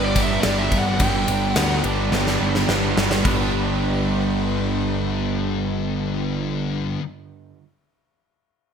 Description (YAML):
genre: rock, shoegaze and dream pop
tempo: 107 BPM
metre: 4/4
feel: straight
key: G major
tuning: A4 = 439 Hz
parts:
  - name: biting lead guitar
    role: melody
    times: 0.0-1.8 s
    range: D5 to G5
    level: -26 LUFS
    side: right 1 dB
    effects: overdrive, tape echo
  - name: string machine, violins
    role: sustained chords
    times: 0.0-6.2 s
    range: D4 to D6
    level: -34 LUFS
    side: equal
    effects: none
  - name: twelve-string electric guitar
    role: arpeggios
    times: 0.0-7.0 s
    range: B3 to F#4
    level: -33 LUFS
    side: left 8 dB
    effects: analog chorus, tape echo
  - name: overdriven electric guitar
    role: riff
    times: 0.0-7.0 s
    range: G2 to D4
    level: -29 LUFS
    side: equal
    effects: none
  - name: overdriven semi-hollow guitar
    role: riff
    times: 0.0-7.0 s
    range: G2 to G4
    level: -26 LUFS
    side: right 10 dB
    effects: reverse reverb
  - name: thick fuzz guitar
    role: riff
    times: 0.0-7.0 s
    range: G2 to G3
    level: -27 LUFS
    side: left 8 dB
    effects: distortion, ensemble chorus
  - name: growling picked electric bass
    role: bass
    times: 0.0-7.0 s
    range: G1 to D2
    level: -26 LUFS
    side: equal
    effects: overdrive
  - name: gated 80s drum kit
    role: drums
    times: 0.2-3.4 s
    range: crash cymbal, kick drum, ride cymbal, snare drum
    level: -23 LUFS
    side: equal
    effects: none
room: moderate studio reverb, RT60 0.9 s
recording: none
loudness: -19 LUFS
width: side -7 dB against mid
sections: 0.0-3.2 A section; 3.2-5.5 B section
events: drum fill 2.1-3.2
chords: 0.0 G; 3.2 Gmaj7